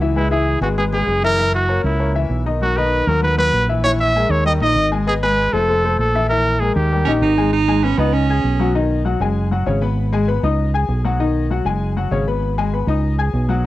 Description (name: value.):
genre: latin.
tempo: 196 BPM.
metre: 4/4.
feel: straight.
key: G# minor.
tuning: A4 = 436 Hz.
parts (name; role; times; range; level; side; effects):
bright baby grand piano; accompaniment; 0.0-13.7 s; C#3 to G#6; -21 LUFS; left 5 dB; none.
fingered electric bass; bass; 0.0-13.7 s; E#1 to D#2; -19 LUFS; right 1 dB; none.
bright trumpet; melody; 0.2-7.3 s; E4 to E5; -18 LUFS; right 1 dB; cassette tape.
clear baritone saxophone; second line; 7.0-8.7 s; B3 to D#4; -18 LUFS; right 6 dB; none.
room: light reverb, small room ambience.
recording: home recording on cassette.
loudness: -15 LUFS.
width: side -15 dB against mid.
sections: 0.0-7.5 A section; 7.5-13.7 B section.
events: none.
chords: 0.2 C#m7; 1.4 F#7; 2.6 Bmaj7; 3.8 A#m7b5; 4.5 D#; 5.1 G#m; 5.7 F; 6.3 Emaj7#11/A#; 6.9 D#; 7.5 G#m; 8.1 C#sus2; 8.7 B; 9.4 F#sus2; 10.0 G#m; 10.6 C#sus2; 11.2 B; 11.8 F#sus2; 12.4 G#m; 13.0 C#sus2.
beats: | 0.15 0.46 0.77 1.08 | 1.38 1.69 2.00 2.31 | 2.61 2.92 3.23 3.53 | 3.84 4.15 4.45 4.76 | 5.07 5.37 5.68 5.99 | 6.29 6.60 6.91 7.21 | 7.52 7.83 8.13 8.44 | 8.75 9.05 9.36 9.67 | 9.97 10.28 10.59 10.89 | 11.20 11.50 11.81 12.12 | 12.42 12.73 13.03 13.34 | 13.64.